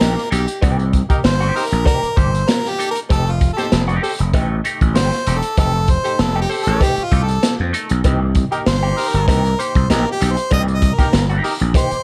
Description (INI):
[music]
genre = funk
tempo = 97 BPM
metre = 4/4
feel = straight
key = C dorian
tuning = A4 = 440 Hz
[part]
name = warm harmonica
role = melody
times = 0.0-12.0 s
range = F4 to Eb5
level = -23 LUFS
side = equal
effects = none
[part]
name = clean electric guitar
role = accompaniment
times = 0.0-12.0 s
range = A3 to A4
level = -28 LUFS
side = equal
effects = wah, spring reverb
[part]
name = gritty slap bass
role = bass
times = 0.0-11.9 s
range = E1 to F2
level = -20 LUFS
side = equal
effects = overdrive
[part]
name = crunchy breakbeat drum kit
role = drums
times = 0.0-12.0 s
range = hi-hat, kick drum, snare drum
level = -21 LUFS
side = equal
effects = none
[part]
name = cowbell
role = percussion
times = 0.0-11.9 s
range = none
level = -31 LUFS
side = equal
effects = none
[part]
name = clear horn section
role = second line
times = 1.1-11.5 s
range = Eb4 to C5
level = -26 LUFS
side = equal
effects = slapback echo
[sound]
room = light reverb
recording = dark, warm production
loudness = -17 LUFS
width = mono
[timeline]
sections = 0.0-12.0 A section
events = harmonica solo 0.0-12.0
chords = 0.0 Cm7; 3.1 F9; 8.1 Cm7